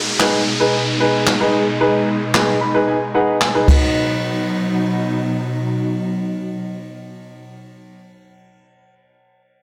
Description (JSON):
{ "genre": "dance-pop", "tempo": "112 BPM", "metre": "4/4", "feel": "straight", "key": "B major", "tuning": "A4 = 439 Hz", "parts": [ { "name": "soft string machine", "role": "sustained chords", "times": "0.0-7.6 s", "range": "B2 to D#4", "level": "-24 LUFS", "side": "equal", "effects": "ensemble chorus, sidechain pumping, low-pass filter" }, { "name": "downlifter", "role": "sound effects", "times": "0.0-4.0 s", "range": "none", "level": "-26 LUFS", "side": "equal", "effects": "none" }, { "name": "warm baby grand piano", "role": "accompaniment", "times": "0.2-7.6 s", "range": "D#4 to B5", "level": "-22 LUFS", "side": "equal", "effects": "sidechain pumping, low-pass filter" }, { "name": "jazz brush drum kit", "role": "drums", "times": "0.2-3.8 s", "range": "handclaps, kick drum, ride cymbal, snare drum", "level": "-21 LUFS", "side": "equal", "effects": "none" } ], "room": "moderate lush hall reverb, RT60 1.9 s", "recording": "blown-out, overdriven recording, overdrive", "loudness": "-18 LUFS", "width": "mono", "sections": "0.0-3.9 A section; 3.9-8.2 B section", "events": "grand piano fill 2.3-3.9", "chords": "0.0 G#m; 3.7 B", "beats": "0.20 0.73 1.27 | 1.81 2.34 2.88 3.41 | 3.95 4.49 5.02 5.56 | 6.09 6.63 7.16" }